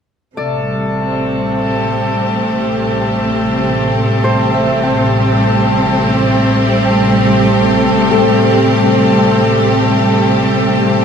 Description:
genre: ambient.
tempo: free time.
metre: none.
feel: none.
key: A minor.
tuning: A4 = 443 Hz.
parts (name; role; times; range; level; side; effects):
bright studio string section; sustained chords; 0.4-11.0 s; C3 to G4; -13 LUFS; right 1 dB; shimmer reverb.
Celtic harp; arpeggios; 0.4-10.3 s; A4 to G5; -21 LUFS; left 1 dB; diffuse ambient delay, shimmer reverb.
dark chamber double bass section; bass; 0.4-11.0 s; A1; -19 LUFS; equal; none.
pedal harmonium; drone; 0.4-11.0 s; A3 to A4; -20 LUFS; left 2 dB; stereo widening.
room: wet huge ambient reverb, RT60 7.4 s.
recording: none.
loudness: -11 LUFS.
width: side -7 dB against mid.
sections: 0.4-11.0 A section.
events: none.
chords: 0.4 Am7.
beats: free time.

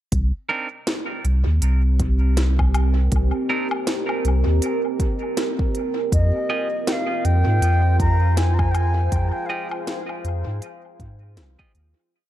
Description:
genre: ambient dub.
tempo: 80 BPM.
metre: 4/4.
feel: swing 59% on 16ths.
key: C minor.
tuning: A4 = 436 Hz.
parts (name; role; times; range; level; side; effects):
deep dark ambient pad; sustained chords; 1.6-12.1 s; C4 to F5; -27 LUFS; right 2 dB; chorus, built-in reverb.
warm sub bass; bass; 0.1-11.9 s; C2 to Ab2; -18 LUFS; equal; tube saturation.
electronic kick drum; drums; 0.1-11.7 s; none; -23 LUFS; equal; none.
organic electronic drum kit; drums; 0.1-11.9 s; hi-hat, snare drum, woodblock; -29 LUFS; equal; dub echo.
clean electric guitar; stabs; 0.5-11.7 s; C4 to Eb5; -30 LUFS; right 3 dB; dub echo.
wooden flute; melody; 6.1-9.9 s; Eb5 to Bb5; -26 LUFS; left 1 dB; vintage 12-bit sampler grit, dub echo.
room: light reverb, digital ambience.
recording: echo-heavy mix.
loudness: -18 LUFS.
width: side -13 dB against mid.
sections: 0.1-12.1 groove.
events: fade-out 8.1-12.1.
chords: 0.1 Cm7; 6.1 Fm9.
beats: | 0.12 0.87 1.62 2.37 | 3.12 3.87 4.62 5.37 | 6.12 6.87 7.62 8.37 | 9.12 9.87 10.62 11.37.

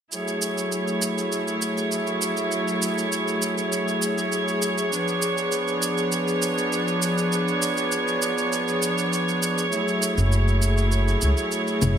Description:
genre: sunset chillout.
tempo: 100 BPM.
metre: 4/4.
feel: straight.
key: F# minor.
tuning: A4 = 440 Hz.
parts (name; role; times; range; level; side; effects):
rich chamber string section; sustained chords; 0.1-12.0 s; E#3 to C#5; -23 LUFS; equal; none.
cabasa and congas; drums; 0.1-11.9 s; none; -28 LUFS; right 2 dB; none.
upright bass; bass; 10.2-12.0 s; F#1 to C#2; -20 LUFS; equal; none.
room: light reverb, small room ambience.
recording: none.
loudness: -21 LUFS.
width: side -9 dB against mid.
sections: 0.1-12.0 A section.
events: none.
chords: 0.1 F#m9; 4.9 C#7b9; 9.7 F#m9.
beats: | 0.13 0.73 1.33 1.93 | 2.53 3.13 3.73 4.33 | 4.93 5.53 6.13 6.73 | 7.33 7.93 8.53 9.13 | 9.73 10.33 10.93 11.53.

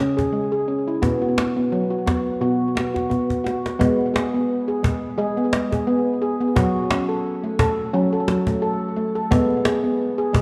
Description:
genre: world meditative, meditative tuned percussion.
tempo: 87 BPM.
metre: 4/4.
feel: swing 56% on 16ths.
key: unclear.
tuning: A4 = 439 Hz.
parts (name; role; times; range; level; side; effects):
handpan; arpeggios; 0.0-10.4 s; B2 to A4; -22 LUFS; equal; delay, shimmer reverb.
cajon; percussion; 0.2-10.4 s; none; -26 LUFS; equal; none.
room: wet echo chamber reverb, RT60 1.7 s, studio reverb.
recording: dark, warm production.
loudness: -21 LUFS.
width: mono.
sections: 0.0-3.8 A section; 3.8-10.4 B section.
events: drum fill 3.1-3.8.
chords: 0.0 C#m; 1.0 B5; 3.8 G#m; 6.6 F#m; 9.3 G#m.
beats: 0.33 | 1.03 1.72 2.41 3.10 | 3.79 4.49 5.18 5.87 | 6.56 7.25 7.93 8.62 | 9.31 10.00.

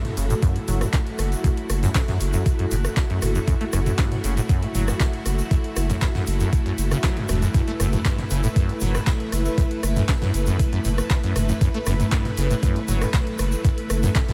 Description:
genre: acid house.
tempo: 118 BPM.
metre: 4/4.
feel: straight.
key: F# minor.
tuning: A4 = 440 Hz.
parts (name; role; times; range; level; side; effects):
string machine, full ensemble; sustained chords; 0.0-14.3 s; A3 to B4; -31 LUFS; equal; ensemble chorus, sidechain pumping.
acid bass, saw; riff; 0.0-14.3 s; E2 to A3; -28 LUFS; equal; lush chorus, delay.
jazz brush drum kit; drums; 0.0-14.3 s; hi-hat, snare drum; -45 LUFS; equal; none.
punchy analog drum machine; drums; 0.0-14.3 s; handclaps, hi-hat, rim click, toms; -32 LUFS; equal; overdrive.
saturated sub bass; bass; 0.2-14.1 s; E1 to F#1; -26 LUFS; equal; sidechain pumping.
egg shaker; percussion; 0.2-14.3 s; none; -40 LUFS; equal; none.
electronic kick drum; drums; 0.4-14.3 s; none; -23 LUFS; equal; overdrive.
room: light reverb, small room ambience.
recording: none.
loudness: -22 LUFS.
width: mono.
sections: 0.0-14.3 A section.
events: none.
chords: 0.0 F#m7.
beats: 0.43 0.93 | 1.44 1.95 2.46 2.97 | 3.48 3.98 4.49 5.00 | 5.51 6.02 6.53 7.04 | 7.54 8.05 8.56 9.07 | 9.58 10.09 10.60 11.10 | 11.61 12.12 12.63 13.14 | 13.65 14.15.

